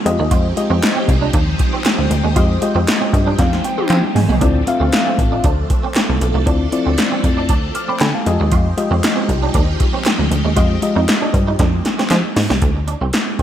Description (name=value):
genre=early-eighties boogie funk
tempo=117 BPM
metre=4/4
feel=straight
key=unclear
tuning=A4 = 441 Hz
part: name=phased string machine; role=sustained chords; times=0.0-12.6 s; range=F3 to A4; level=-24 LUFS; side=equal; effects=ensemble chorus, phaser
part: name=mellow FM electric piano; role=accompaniment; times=0.1-11.6 s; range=Ab3 to F6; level=-20 LUFS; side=left 4 dB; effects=chorus
part: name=plucky analog bass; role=bass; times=0.1-13.4 s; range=A1 to F3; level=-17 LUFS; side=equal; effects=none
part: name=electro analog drum machine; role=drums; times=0.1-13.4 s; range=hi-hat, kick drum, snare drum, toms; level=-17 LUFS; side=equal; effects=overdrive, gated reverb
part: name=clean electric guitar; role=riff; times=0.2-13.4 s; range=G3 to F4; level=-25 LUFS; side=right 7 dB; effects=ensemble chorus
part: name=group handclap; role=percussion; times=0.8-13.3 s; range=none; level=-27 LUFS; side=left 1 dB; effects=none
room=light reverb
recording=none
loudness=-14 LUFS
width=side -10 dB against mid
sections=0.0-12.6 A section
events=FM electric piano fill 2.9-4.4, 7.7-8.5; drum fill 3.4-4.4, 11.6-12.6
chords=0.1 Fm9; 4.4 Dm9; 8.3 Fm9; 12.6 D7(no3)